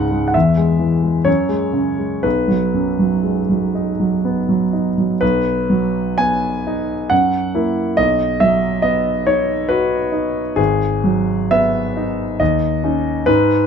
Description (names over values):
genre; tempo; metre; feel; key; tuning
classical, romantic character piece for solo piano; 59-70 BPM; 3/4; rubato; B major; A4 = 441 Hz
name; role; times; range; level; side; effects
warm concert grand piano; solo; 0.0-13.7 s; G#1 to G#5; -15 LUFS; equal; none
room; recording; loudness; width
moderate large studio reverb, RT60 1.1 s; minimal, uncompressed stereo recording; -15 LUFS; side -7 dB against mid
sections
0.0-5.2 A section; 5.2-13.7 B section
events
none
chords
0.3 E; 1.3 F#sus2; 2.2 B; 7.1 F#7; 8.0 B; 10.6 G#m7; 12.4 C#sus2/D#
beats
0.34 1.26 | 2.25 3.25 4.24 | 5.22 6.20 7.11 | 7.98 8.85 9.71 | 10.58 11.52 12.40 | 13.28